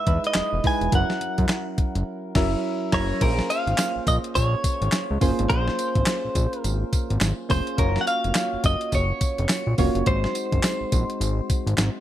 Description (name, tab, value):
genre	R&B, new jack swing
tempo	105 BPM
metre	4/4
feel	swing 60% on 16ths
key	Bb minor from 3.2 s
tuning	A4 = 440 Hz
part	direct-recorded clean electric guitar	melody	0.0-11.7 s	Bb4 to G#5	-26 LUFS	equal	lush chorus
part	soft electric-piano-like synth keys	accompaniment	0.0-12.0 s	F#3 to A#5	-28 LUFS	right 1 dB	chorus
part	fat analog bass	bass	0.1-11.9 s	E1 to F#2	-24 LUFS	equal	none
part	crisp 8-bit digital drum machine	drums	0.1-11.9 s	crash cymbal, handclaps, hi-hat, kick drum, snare drum, tambourine	-24 LUFS	equal	none
room	light reverb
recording	bright 1980s-style digital production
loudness	-21 LUFS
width	side -12 dB against mid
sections	0.0-3.2 A section; 3.2-12.0 B section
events	band accent 2.1-3.2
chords	0.0 Emaj7; 0.9 F#7; 3.2 Bbm9; 7.8 Gbmaj7; 10.1 Ab7